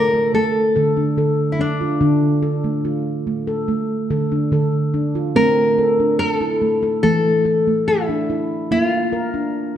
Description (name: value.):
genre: world meditative, meditative tuned percussion.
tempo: 72 BPM.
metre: 4/4.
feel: straight.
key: D hirajoshi.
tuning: A4 = 440 Hz.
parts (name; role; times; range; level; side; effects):
nylon-string guitar; melody; 0.0-9.8 s; D4 to Bb4; -19 LUFS; left 2 dB; none.
handpan; arpeggios; 0.0-9.8 s; D3 to Bb4; -19 LUFS; right 1 dB; none.
room: wet scoring stage reverb, RT60 1.6 s, small room ambience.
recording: dark, warm production.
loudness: -16 LUFS.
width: side -10 dB against mid.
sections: 0.0-5.4 A section; 5.4-9.8 B section.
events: none.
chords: 0.0 Dm; 5.4 Am; 8.7 Bb.